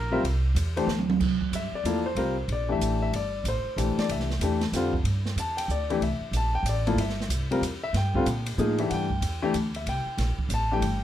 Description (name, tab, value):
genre	modal jazz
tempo	187 BPM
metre	3/4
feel	swing 63% on 8ths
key	C mixolydian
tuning	A4 = 440 Hz
part	upright bass	bass	0.0-11.0 s	G1 to Bb2	-28 LUFS	right 1 dB	none
part	clear grand piano	accompaniment	0.1-11.0 s	D3 to A5	-27 LUFS	left 3 dB	none
part	open jazz drum kit	drums	0.2-10.9 s	crash cymbal, hi-hat, kick drum, ride cymbal, snare drum, toms	-32 LUFS	right 3 dB	none
room	moderate studio reverb, RT60 0.5 s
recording	none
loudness	-24 LUFS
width	side -11 dB against mid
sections	0.0-1.2 A section; 1.2-11.0 A section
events	drum fill 0.9-1.2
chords	0.0 C7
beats	| 0.23 0.55 0.87 | 1.19 1.51 1.83 | 2.15 2.48 2.80 | 3.12 3.44 3.76 | 4.08 4.40 4.72 | 5.04 5.37 5.69 | 6.01 6.33 6.65 | 6.97 7.29 7.61 | 7.93 8.25 8.57 | 8.90 9.22 9.54 | 9.86 10.18 10.50 | 10.82